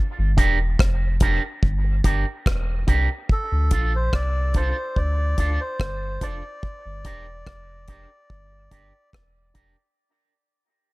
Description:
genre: dub reggae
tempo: 72 BPM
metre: 4/4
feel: straight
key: unclear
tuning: A4 = 438 Hz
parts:
  - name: warm sub bass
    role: bass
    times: 0.2-9.8 s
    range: E1 to D2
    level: -23 LUFS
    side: equal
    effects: none
  - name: electric guitar with an envelope filter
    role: accompaniment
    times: 0.4-9.8 s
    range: D4 to Bb4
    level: -29 LUFS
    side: right 4 dB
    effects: dub echo
  - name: deep reggae drum kit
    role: drums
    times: 0.4-9.8 s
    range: hi-hat, kick drum, rim click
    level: -21 LUFS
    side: equal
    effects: none
  - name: melodica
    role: melody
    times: 3.3-9.1 s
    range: A4 to D5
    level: -31 LUFS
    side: equal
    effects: dub echo
room: studio ambience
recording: none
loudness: -20 LUFS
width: side -22 dB against mid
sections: 0.0-10.0 A section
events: break 0.0-3.3; fade-out 0.0-10.0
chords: 0.0 Gm; 3.3 Dm; 6.6 Gm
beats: 0.79 1.62 2.46 | 3.29 4.13 4.96 5.80 | 6.63 7.47 8.30 9.13

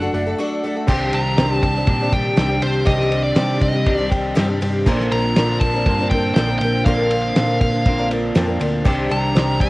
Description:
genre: folk rock and heartland rock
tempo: 120 BPM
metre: 4/4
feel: straight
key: unclear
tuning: A4 = 441 Hz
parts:
  - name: dark smooth lead guitar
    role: melody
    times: 0.0-9.7 s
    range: C5 to Bb5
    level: -24 LUFS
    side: equal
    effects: overdrive, cassette tape, analog delay
  - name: picked twelve-string acoustic guitar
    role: accompaniment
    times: 0.0-9.7 s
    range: Bb2 to Bb4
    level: -22 LUFS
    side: left 2 dB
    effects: cassette tape
  - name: twelve-string electric guitar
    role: riff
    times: 0.0-9.7 s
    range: Bb2 to G4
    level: -24 LUFS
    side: right 1 dB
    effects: lush chorus, cassette tape
  - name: hollow-body short-scale picked electric bass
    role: bass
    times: 0.0-9.7 s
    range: F#1 to C3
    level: -23 LUFS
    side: equal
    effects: none
  - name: overdriven reed electric piano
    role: accompaniment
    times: 0.1-9.7 s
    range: C4 to D6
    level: -30 LUFS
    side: right 2 dB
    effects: cassette tape
  - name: cloth-damped thuddy drum kit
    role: drums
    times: 0.1-9.7 s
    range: crash cymbal, hi-hat, kick drum, ride cymbal, snare drum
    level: -21 LUFS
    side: equal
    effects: cassette tape
room: light reverb, small room reverb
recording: home recording on cassette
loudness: -16 LUFS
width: side -20 dB against mid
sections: 0.9-9.7 A section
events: break 0.4-0.9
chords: 0.0 D/F#; 0.9 Cmadd9; 4.9 Bbadd9; 8.9 Cmadd9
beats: 0.38 | 0.88 1.38 1.88 2.38 | 2.87 3.37 3.87 4.37 | 4.87 5.37 5.86 6.36 | 6.86 7.36 7.86 8.36 | 8.86 9.36

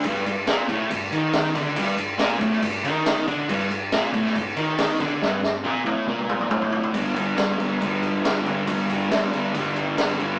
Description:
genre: garage rock duo or trio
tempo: 139 BPM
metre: 4/4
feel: straight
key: G minor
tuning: A4 = 440 Hz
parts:
  - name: fuzz guitar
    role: riff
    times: 0.0-10.4 s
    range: G2 to G3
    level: -26 LUFS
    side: equal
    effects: distortion
  - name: raw garage drum kit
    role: drums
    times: 0.0-10.3 s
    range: crash cymbal, kick drum, snare drum, toms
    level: -27 LUFS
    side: equal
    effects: none
room: wet stone room reverb, RT60 1.2 s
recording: rough rehearsal-room recording, tube saturation, cassette tape, small speaker sound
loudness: -23 LUFS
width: mono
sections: 0.0-6.9 A section; 6.9-10.4 B section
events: drum fill 5.2-6.9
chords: 0.0 Gm; 6.9 G5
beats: | 0.03 0.47 0.90 1.33 | 1.76 2.19 2.62 3.05 | 3.48 3.92 4.35 4.78 | 5.21 5.64 6.07 6.50 | 6.94 7.37 7.80 8.23 | 8.67 9.10 9.53 9.97

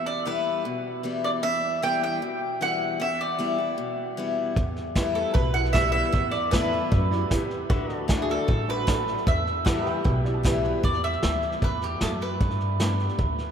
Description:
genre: honky-tonk and classic country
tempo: 153 BPM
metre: 4/4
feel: straight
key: E minor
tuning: A4 = 441 Hz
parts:
  - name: mandolin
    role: melody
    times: 0.0-13.4 s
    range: G4 to G5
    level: -28 LUFS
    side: right 2 dB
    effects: none
  - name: picked steel-string acoustic guitar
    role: accompaniment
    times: 0.0-13.5 s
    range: E2 to G4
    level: -29 LUFS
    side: left 4 dB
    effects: none
  - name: pedal steel guitar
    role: sustained chords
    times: 0.0-10.8 s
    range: F#4 to E5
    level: -38 LUFS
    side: equal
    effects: none
  - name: upright bass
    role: bass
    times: 4.6-13.5 s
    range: A1 to G2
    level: -29 LUFS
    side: equal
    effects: none
  - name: vintage brush drum kit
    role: drums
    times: 4.6-13.4 s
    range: hi-hat, kick drum, snare drum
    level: -26 LUFS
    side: equal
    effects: none
  - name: honky-tonk upright piano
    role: accompaniment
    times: 5.0-10.8 s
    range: D4 to B5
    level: -34 LUFS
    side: right 5 dB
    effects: none
room: wet cathedral reverb, RT60 7.4 s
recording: in a vast, echoing space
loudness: -23 LUFS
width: side -8 dB against mid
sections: 0.0-10.8 A section; 10.8-13.5 B section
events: honky-tonk piano fill 9.7-10.8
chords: 0.0 Em; 7.7 D; 9.3 Em; 12.4 G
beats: 0.26 0.65 1.04 | 1.44 1.83 2.22 2.61 | 3.00 3.39 3.78 4.18 | 4.57 4.96 5.35 5.74 | 6.13 6.53 6.92 7.31 | 7.70 8.09 8.48 8.88 | 9.27 9.66 10.05 10.44 | 10.84 11.23 11.62 12.01 | 12.40 12.80 13.19

